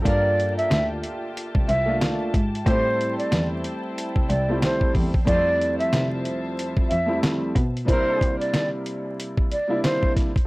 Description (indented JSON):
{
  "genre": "hip hop, boom-bap hip-hop",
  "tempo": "92 BPM",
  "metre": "4/4",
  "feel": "swing 58% on 16ths",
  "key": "unclear",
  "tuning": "A4 = 441 Hz",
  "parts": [
    { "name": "dark baby grand piano", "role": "accompaniment", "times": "0.0-10.3 s", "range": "F2 to A4", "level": "-28 LUFS", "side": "equal", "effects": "high-pass filter, low-pass filter" },
    { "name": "warm studio string section", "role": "sustained chords", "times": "0.0-7.9 s", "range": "F3 to A5", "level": "-35 LUFS", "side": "equal", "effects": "high-pass filter, low-pass filter" },
    { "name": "rich cello", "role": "bass", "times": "0.0-7.8 s", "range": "C2 to C3", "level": "-26 LUFS", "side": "equal", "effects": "none" },
    { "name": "breathy jazz flute", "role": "melody", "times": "0.1-10.1 s", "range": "C5 to E5", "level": "-24 LUFS", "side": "right 1 dB", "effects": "high-pass filter, low-pass filter, analog delay" },
    { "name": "dark trumpet section", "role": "stabs", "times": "0.1-8.3 s", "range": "G3 to C5", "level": "-37 LUFS", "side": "equal", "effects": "high-pass filter, low-pass filter, analog delay" },
    { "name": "dusty soul sampler-style drum kit", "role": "drums", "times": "0.1-10.5 s", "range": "hi-hat, kick drum, snare drum", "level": "-23 LUFS", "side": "equal", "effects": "none" }
  ],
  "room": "little or no reverb",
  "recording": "dry, gritty hardware recording, vinyl crackle",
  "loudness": "-20 LUFS",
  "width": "side -22 dB against mid",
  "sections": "0.0-10.5 A section",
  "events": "none",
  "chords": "0.1 Gm9; 2.7 Am7; 5.3 Fmaj7; 7.9 C7",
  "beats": "| 0.05 0.71 1.36 2.01 | 2.66 3.31 3.97 4.62 | 5.27 5.92 6.58 7.23 | 7.88 8.53 9.18 9.84"
}